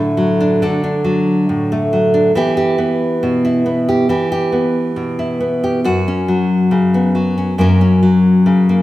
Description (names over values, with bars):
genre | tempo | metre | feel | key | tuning
folk | 69 BPM | 4/4 | straight | unclear | A4 = 440 Hz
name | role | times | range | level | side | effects
nylon-string guitar | solo | 0.0-8.8 s | F#2 to A#4 | -12 LUFS | equal | none
room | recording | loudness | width
wet stone room reverb, RT60 1.3 s | band playing live in one room | -12 LUFS | side -15 dB against mid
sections
0.0-8.8 A section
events
none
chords
0.0 D; 2.4 Em; 5.8 F#sus4; 7.6 F#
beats
0.61 1.49 | 2.36 3.23 4.10 4.97 | 5.84 6.71 7.59 8.46